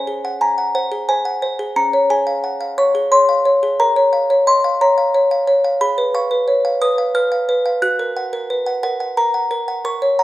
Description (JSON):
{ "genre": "classical, lullaby for music box", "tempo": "59 BPM (dotted quarters)", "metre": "6/8", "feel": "straight", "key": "F# major from 5.8 s", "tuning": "A4 = 440 Hz", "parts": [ { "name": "music box", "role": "solo", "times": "0.0-10.2 s", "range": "Db4 to F#6", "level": "-14 LUFS", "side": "equal", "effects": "none" } ], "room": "moderate recital hall reverb, RT60 1.3 s", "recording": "minimal, uncompressed stereo recording", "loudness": "-14 LUFS", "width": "side -15 dB against mid", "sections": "0.0-10.2 A section", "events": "none", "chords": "0.0 Ab7/Db; 1.8 Db; 3.8 Bbm; 5.8 C#7/G#; 7.8 F#", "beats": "0.75 | 1.76 2.78 | 3.79 4.80 | 5.81 6.82 | 7.83 8.84 | 9.85" }